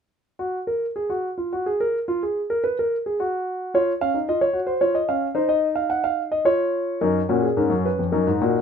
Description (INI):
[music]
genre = classical, baroque-style 4-part fugue for grand piano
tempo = 109 BPM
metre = 3/4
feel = straight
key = F# major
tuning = A4 = 438 Hz
[part]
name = warm concert grand piano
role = solo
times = 0.4-8.6 s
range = E#2 to Gb5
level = -20 LUFS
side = equal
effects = none
[sound]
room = light reverb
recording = none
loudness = -20 LUFS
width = side -7 dB against mid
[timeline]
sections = 0.4-8.6 A section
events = none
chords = 0.4 N.C.; 3.7 C#; 4.8 C#/E#; 5.4 Cdim/Eb (rootless); 6.5 C#/E#; 7.0 F#